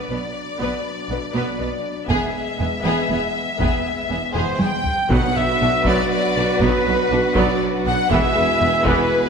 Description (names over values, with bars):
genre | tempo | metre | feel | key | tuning
cinematic, epic orchestral film score | 80 BPM (dotted quarters) | 6/8 | straight | unclear | A4 = 440 Hz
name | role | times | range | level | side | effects
clear symphonic violin section | melody | 0.0-9.3 s | B4 to G5 | -24 LUFS | left 4 dB | none
rich symphonic violin section | second line | 0.0-9.3 s | F#4 to B4 | -26 LUFS | left 2 dB | none
clear symphonic viola section | accompaniment | 0.0-9.1 s | E3 to D4 | -26 LUFS | right 3 dB | none
warm French horn section | sustained chords | 0.0-9.3 s | F#3 to E4 | -30 LUFS | left 4 dB | none
rich symphonic double bass section | bass | 0.1-8.9 s | E1 to B1 | -29 LUFS | right 3 dB | none
warm symphonic cello section | bass | 0.1-8.9 s | E2 to B2 | -28 LUFS | right 3 dB | none
taiko ensemble | drums | 2.1-9.3 s | none | -25 LUFS | equal | none
clear trumpet | stabs | 4.4-9.3 s | B4 to G5 | -22 LUFS | right 1 dB | none
dark trombone section | sustained chords | 5.1-9.3 s | B2 to G#3 | -26 LUFS | right 5 dB | none
mellow tuba | bass | 5.1-9.0 s | E1 to B1 | -29 LUFS | right 4 dB | none
timpani | percussion | 5.1-5.8 s | B2 | -28 LUFS | equal | none
room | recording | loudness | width
wet scoring stage reverb, RT60 1.8 s | none | -17 LUFS | side -6 dB against mid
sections
0.0-5.1 A section; 5.1-9.3 B section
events
drum fill 4.4-5.1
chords
0.0 Bm; 2.1 E; 5.1 Bm; 8.1 E